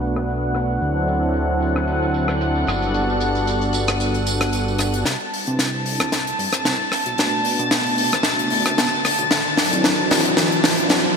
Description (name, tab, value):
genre	nu-disco, nu disco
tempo	113 BPM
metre	4/4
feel	swing 55% on 16ths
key	unclear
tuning	A4 = 439 Hz
part	warm analog pad	accompaniment	0.0-10.9 s	F#3 to E5	-23 LUFS	equal	chorus, ping-pong delay
part	warm chamber string section	sustained chords	0.0-11.2 s	F#5 to A6	-24 LUFS	equal	vintage 12-bit sampler grit, low-pass filter
part	fat analog bass	bass	0.0-11.0 s	D1 to C3	-26 LUFS	equal	high-pass filter
part	tight funk drum kit	drums	0.0-11.0 s	hi-hat, rim click, snare drum, tambourine	-21 LUFS	left 1 dB	none
part	riser	sound effects	7.0-11.2 s	none	-27 LUFS	right 2 dB	none
room	wet lush hall reverb, RT60 2.1 s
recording	bright 1980s-style digital production, low-pass filter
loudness	-17 LUFS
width	side -5 dB against mid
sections	0.0-5.1 A section; 5.1-11.2 B section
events	filter sweep 0.0-5.1; build-up 5.1-11.2; drum fill 5.1-11.2; filter sweep on string section 5.1-11.2; riser 7.0-11.2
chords	0.0 Bm7; 0.8 D9; 2.7 Gmaj9; 5.1 Cmaj9; 6.9 Bm7; 9.3 D9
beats	0.28 | 0.81 1.35 1.88 2.41 | 2.94 3.47 4.00 4.53 | 5.06 5.59 6.12 6.66 | 7.19 7.72 8.25 8.78 | 9.31 9.84 10.37 10.90